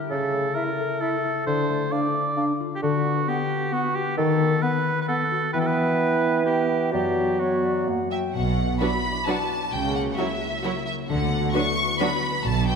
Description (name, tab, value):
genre	cinematic, playful, whimsical film cue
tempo	132 BPM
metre	3/4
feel	straight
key	B minor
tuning	A4 = 439 Hz
part	concert harp	arpeggios	0.0-12.8 s	F#2 to G5	-28 LUFS	left 7 dB	none
part	warm oboe	second line	0.1-7.9 s	F#4 to D5	-26 LUFS	right 2 dB	none
part	mellow bassoon	accompaniment	0.1-8.1 s	C#3 to F#3	-26 LUFS	right 2 dB	none
part	concert flute	second line	0.5-8.3 s	C#5 to G5	-34 LUFS	right 1 dB	none
part	warm clarinet	second line	0.5-8.0 s	A#3 to E4	-31 LUFS	right 2 dB	none
part	rich studio violin section	melody	8.1-12.8 s	E5 to C#6	-27 LUFS	left 2 dB	none
part	rich studio cello section	bass	8.3-12.8 s	B2 to D3	-30 LUFS	right 5 dB	none
part	rich studio double bass section	bass	8.3-12.8 s	B1 to D2	-29 LUFS	right 4 dB	none
part	warm studio violin section	second line	8.8-12.1 s	F#4 to B4	-32 LUFS	left 2 dB	none
part	rich studio viola section	accompaniment	8.8-12.1 s	F#3 to E4	-30 LUFS	right 3 dB	none
room	wet concert hall reverb, RT60 1.9 s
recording	none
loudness	-21 LUFS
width	side -6 dB against mid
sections	0.0-8.3 A section; 8.3-12.8 B section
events	none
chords	0.1 A/C#; 1.5 Dm; 2.8 Bm/D; 4.2 B7/D#; 5.5 Em; 6.9 Bm/F#; 7.9 F#; 8.3 Bm; 9.7 F#7/C#; 11.1 Bm/D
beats	| 0.10 0.56 1.02 | 1.47 1.92 2.38 | 2.83 3.27 3.72 | 4.17 4.63 5.08 | 5.53 5.99 6.45 | 6.92 7.40 7.88 | 8.35 8.81 9.27 | 9.73 10.18 10.64 | 11.09 11.54 11.99 | 12.45